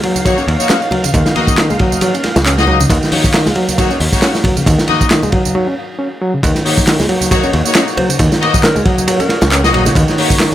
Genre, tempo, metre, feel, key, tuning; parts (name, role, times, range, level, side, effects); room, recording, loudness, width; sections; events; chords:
breakbeat, breaks; 136 BPM; 4/4; swing 56% on 16ths; A4 = 440 Hz
lush unison pad; sustained chords; 0.0-10.5 s; Bb3 to F5; -23 LUFS; right 1 dB; chorus, phaser, sidechain pumping
overdriven reed electric piano; riff; 0.0-10.5 s; Db3 to Db4; -17 LUFS; equal; fast tremolo, ping-pong delay
crunchy breakbeat drum kit; drums; 0.0-10.5 s; hi-hat, kick drum, ride cymbal, snare drum; -15 LUFS; equal
electronic tambourine and handclaps; drums; 0.2-10.5 s; -19 LUFS; right 2 dB
congas; percussion; 0.2-10.5 s; -25 LUFS; left 2 dB
clear symphonic string section; stabs; 0.3-10.3 s; Bb3 to Eb5; -18 LUFS; left 4 dB; ping-pong delay
picked electric bass; bass; 0.5-10.0 s; Bb1 to Eb2; -15 LUFS; equal
soft struck synth lead; melody; 8.0-9.6 s; Bb4 to C5; -22 LUFS; right 1 dB; chorus, AM radio sound, ping-pong delay
light reverb; -10 LUFS; side -12 dB against mid
0.0-6.4 A section; 6.4-10.5 B section
break 5.5-6.4; drop 6.4-10.5
0.0 Ebm7